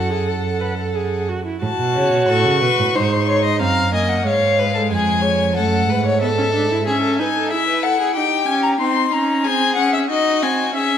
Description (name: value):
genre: classical, baroque-style fugue for string quartet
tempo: 92 BPM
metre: 4/4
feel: straight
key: F# minor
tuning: A4 = 440 Hz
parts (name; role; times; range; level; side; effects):
- rich violin; melody; 0.0-11.0 s; D#5 to C#6; -20 LUFS; left 6 dB; none
- warm violin; second line; 0.0-11.0 s; D#4 to E#5; -21 LUFS; equal; none
- warm viola; accompaniment; 0.0-11.0 s; G#3 to B4; -22 LUFS; right 2 dB; none
- rich cello; bass; 0.0-6.9 s; E#2 to C#3; -22 LUFS; right 3 dB; none
room: wet recital hall reverb, RT60 1.8 s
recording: none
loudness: -16 LUFS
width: side -9 dB against mid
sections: 0.0-1.6 A section; 1.6-11.0 B section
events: none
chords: 0.0 F#m; 3.0 G#7; 4.3 C#/G#; 5.6 F#m; 6.9 C#m; 8.2 D#7